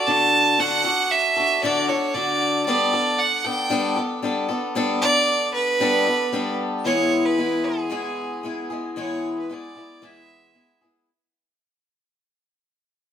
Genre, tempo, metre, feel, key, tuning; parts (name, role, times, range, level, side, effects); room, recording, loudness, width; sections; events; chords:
rock; 115 BPM; 4/4; straight; E mixolydian; A4 = 440 Hz
clear fiddle; melody; 0.0-10.8 s; G#4 to A5; -20 LUFS; right 3 dB
picked swing-style acoustic guitar; accompaniment; 0.0-11.1 s; E2 to A4; -24 LUFS; left 3 dB
moderate stone room reverb, RT60 1.2 s; band playing live in one room; -19 LUFS; side -9 dB against mid
0.0-6.8 A section; 6.8-11.1 B section
fade-out 6.8-11.1
0.0 D; 2.7 Gadd9; 6.8 E